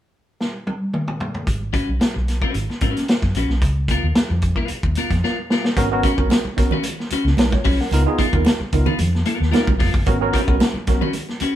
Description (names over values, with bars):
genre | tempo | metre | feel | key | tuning
funk | 112 BPM | 4/4 | straight | G# dorian | A4 = 440 Hz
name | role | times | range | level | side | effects
vintage drum kit | drums | 0.4-11.5 s | hi-hat, kick drum, snare drum, toms | -20 LUFS | equal | none
vintage muted fingered electric bass | bass | 1.5-11.4 s | E#1 to G#2 | -21 LUFS | equal | none
clean electric guitar | accompaniment | 1.7-11.6 s | B3 to B4 | -25 LUFS | left 3 dB | spring reverb
tine electric piano | stabs | 5.8-11.2 s | B3 to F#5 | -23 LUFS | right 3 dB | overdrive, fast stereo tremolo
congas | percussion | 5.8-11.5 s | none | -29 LUFS | right 4 dB | none
room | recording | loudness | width
moderate studio reverb, RT60 0.7 s | band playing live in one room | -17 LUFS | side -12 dB against mid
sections
0.0-1.5 A section; 1.5-5.8 B section; 5.8-11.6 C section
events
drum fill 0.4-1.5, 5.2-5.8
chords
0.0 N.C.; 1.5 G#m11; 3.6 C#13; 5.8 G#m11 (rootless); 7.9 C#13; 10.1 G#m11